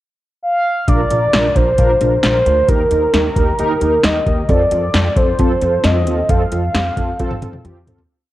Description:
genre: synth-pop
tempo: 133 BPM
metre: 4/4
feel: straight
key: unclear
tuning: A4 = 440 Hz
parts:
  - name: mellow horn-like synth lead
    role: melody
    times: 0.4-7.6 s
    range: Bb4 to F5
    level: -16 LUFS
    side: equal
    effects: chorus
  - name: mellow synth brass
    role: accompaniment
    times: 0.9-8.0 s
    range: C4 to Bb4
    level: -21 LUFS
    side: right 2 dB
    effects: chorus
  - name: upright bass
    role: bass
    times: 0.9-8.0 s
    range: Bb1 to F2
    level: -19 LUFS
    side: equal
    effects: none
  - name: electro analog drum machine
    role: drums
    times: 0.9-8.1 s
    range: hi-hat, kick drum, snare drum, toms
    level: -18 LUFS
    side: equal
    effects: none
room: moderate lush hall reverb, RT60 2.3 s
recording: worn, warbling old tape, cassette tape, warbly pitch drift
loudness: -13 LUFS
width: side -15 dB against mid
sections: 0.0-0.9 pickup bar; 0.9-8.1 verse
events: fade-out 6.3-8.1; drum fill 7.6-8.1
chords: 0.0 N.C.; 0.9 Bb; 2.7 Eb; 4.5 F

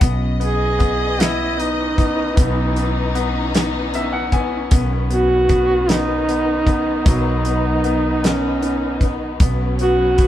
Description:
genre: six-eight pop ballad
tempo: 51 BPM (dotted quarters)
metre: 6/8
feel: straight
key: B major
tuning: A4 = 440 Hz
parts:
  - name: clear baby grand piano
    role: accompaniment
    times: 0.0-10.3 s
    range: F#3 to G#5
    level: -25 LUFS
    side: left 4 dB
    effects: none
  - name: warm studio string section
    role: sustained chords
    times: 0.0-10.3 s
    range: D#3 to D#5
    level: -25 LUFS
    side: left 2 dB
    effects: none
  - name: woody fretless electric bass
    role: bass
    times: 0.0-10.3 s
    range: B1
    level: -22 LUFS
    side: equal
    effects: none
  - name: damped 70s drum kit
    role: drums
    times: 0.0-10.3 s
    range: hi-hat, kick drum, snare drum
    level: -17 LUFS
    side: equal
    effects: none
  - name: warm duduk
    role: melody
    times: 0.4-10.3 s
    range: C#4 to G#4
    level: -19 LUFS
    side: right 2 dB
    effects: none
room: moderate stone room reverb, RT60 1.3 s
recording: band playing live in one room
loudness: -16 LUFS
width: side -12 dB against mid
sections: 0.0-10.3 A section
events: grand piano fill 3.5-4.7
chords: 0.0 C#madd9/B; 4.7 Badd9; 9.4 F#sus4/B

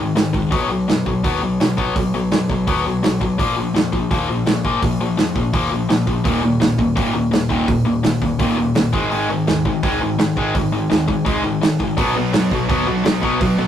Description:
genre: punk rock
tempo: 168 BPM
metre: 4/4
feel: straight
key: unclear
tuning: A4 = 440 Hz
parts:
  - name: tight distorted guitar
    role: riff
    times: 0.0-13.7 s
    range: Eb2 to B3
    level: -18 LUFS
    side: left 3 dB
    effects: distortion
  - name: growling picked electric bass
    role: bass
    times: 0.0-13.7 s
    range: Eb1 to F#2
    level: -28 LUFS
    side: right 1 dB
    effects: overdrive
  - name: loose indie drum kit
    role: drums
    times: 0.2-13.5 s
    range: hi-hat, kick drum, snare drum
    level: -20 LUFS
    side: right 2 dB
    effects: none
  - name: crunchy overdriven guitar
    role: riff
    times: 6.2-13.7 s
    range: Eb2 to B3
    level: -24 LUFS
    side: right 5 dB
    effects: none
  - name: high-gain distorted guitar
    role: riff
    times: 12.0-13.7 s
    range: B2 to B3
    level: -24 LUFS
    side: right 2 dB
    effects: distortion
room: light reverb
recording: rough rehearsal-room recording, warm saturation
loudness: -16 LUFS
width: side -10 dB against mid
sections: 0.0-13.7 A section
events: none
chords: 0.0 Ab5; 0.5 B5; 3.4 Bb5; 6.3 Eb5; 8.9 Ab5; 12.0 B5

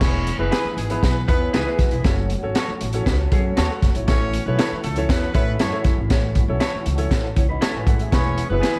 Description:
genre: uptempo 1960s-style soul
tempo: 118 BPM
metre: 4/4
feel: straight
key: E major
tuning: A4 = 442 Hz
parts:
  - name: clear horn section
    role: second line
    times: 0.0-8.8 s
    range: G#3 to C#5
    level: -32 LUFS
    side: equal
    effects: none
  - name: warm grand piano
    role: accompaniment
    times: 0.0-8.8 s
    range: B3 to B5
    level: -29 LUFS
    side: equal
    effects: none
  - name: tonewheel organ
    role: sustained chords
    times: 0.0-8.8 s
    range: E3 to G#4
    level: -36 LUFS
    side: equal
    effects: none
  - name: upright bass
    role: bass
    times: 0.0-8.8 s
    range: E1 to A2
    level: -26 LUFS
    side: equal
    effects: none
  - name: crunchy breakbeat drum kit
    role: drums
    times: 0.0-8.8 s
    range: crash cymbal, hi-hat, kick drum, snare drum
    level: -23 LUFS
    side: equal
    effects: none
  - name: congas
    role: percussion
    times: 0.0-8.8 s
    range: none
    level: -39 LUFS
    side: equal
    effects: none
  - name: electric guitar through a small old amp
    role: stabs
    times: 0.5-8.8 s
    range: B3 to C#5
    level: -31 LUFS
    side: equal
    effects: spring reverb
  - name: electric guitar through a small old amp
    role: riff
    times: 1.3-8.5 s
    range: G#3 to C#5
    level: -35 LUFS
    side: equal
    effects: tremolo
room: little or no reverb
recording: vinyl crackle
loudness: -20 LUFS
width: mono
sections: 0.0-8.8 A section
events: none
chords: 0.0 E; 2.0 F#m; 8.1 E

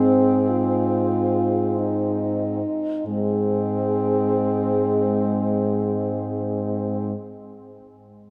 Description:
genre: classical, lyrical piece for horn quartet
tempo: free time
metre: none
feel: none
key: Ab major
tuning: A4 = 440 Hz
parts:
  - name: mellow French horn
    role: melody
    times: 0.0-7.1 s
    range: Ab4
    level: -32 LUFS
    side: equal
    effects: none
  - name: clear French horn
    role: second line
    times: 0.0-7.1 s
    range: C4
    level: -29 LUFS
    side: equal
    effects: none
  - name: dark French horn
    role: accompaniment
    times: 0.0-7.1 s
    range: Ab3 to F4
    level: -26 LUFS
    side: equal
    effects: none
  - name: warm French horn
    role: bass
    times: 0.0-7.1 s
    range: Ab2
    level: -28 LUFS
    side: equal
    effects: none
room: wet cathedral reverb, RT60 4.9 s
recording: dark, warm production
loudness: -22 LUFS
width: mono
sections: 0.0-3.1 A section; 3.1-8.0 B section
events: slowing down 0.0-3.1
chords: 0.0 Ab

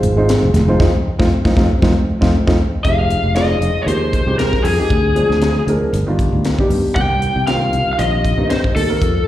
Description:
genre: electric jazz fusion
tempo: 117 BPM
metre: 4/4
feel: swing 55% on 16ths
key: F minor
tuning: A4 = 439 Hz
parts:
  - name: dark grand piano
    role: accompaniment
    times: 0.0-9.0 s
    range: Eb3 to C5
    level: -20 LUFS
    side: right 1 dB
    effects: slapback echo
  - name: sustaining fretless electric bass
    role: bass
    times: 0.0-9.3 s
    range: F1 to G2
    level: -18 LUFS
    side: equal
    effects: wide subtle chorus
  - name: crisp fusion drum kit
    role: drums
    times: 0.0-9.1 s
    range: hi-hat, kick drum, snare drum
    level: -19 LUFS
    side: equal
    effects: none
  - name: congas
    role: percussion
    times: 0.0-2.6 s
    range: none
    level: -19 LUFS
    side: equal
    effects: slapback echo
  - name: lead guitar through a small cranked amp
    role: melody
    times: 2.8-9.3 s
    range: Ab4 to G5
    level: -18 LUFS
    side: left 2 dB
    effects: overdrive, slapback echo
room: light reverb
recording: live gig heard through the venue's PA, recital hall reverb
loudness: -13 LUFS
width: side -13 dB against mid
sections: 0.0-2.8 A section; 2.8-9.3 B section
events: band accent 0.8-2.8; drum fill 2.6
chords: 0.0 Fm7; 2.8 Fm9; 4.9 Dm7b5; 5.9 G7b13; 7.0 Cm7

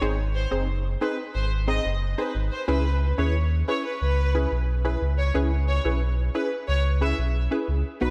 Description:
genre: dancehall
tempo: 90 BPM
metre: 4/4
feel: straight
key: C# minor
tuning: A4 = 440 Hz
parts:
  - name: punchy chord stab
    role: accompaniment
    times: 0.0-8.1 s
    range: B3 to B#4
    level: -32 LUFS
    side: equal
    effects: chorus
  - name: sub bass with octave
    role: bass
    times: 0.0-8.1 s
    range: F#1 to D#2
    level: -26 LUFS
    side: equal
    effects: none
  - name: rich studio violin section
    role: melody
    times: 0.3-8.1 s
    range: B4 to E5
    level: -33 LUFS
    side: equal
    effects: diffuse ambient delay
room: moderate lush hall reverb, RT60 2.8 s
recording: dreamy mix soaked in reverb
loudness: -25 LUFS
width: mono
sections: 0.0-2.7 A section; 2.7-8.1 B section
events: none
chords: 0.0 G#; 2.7 C#m7

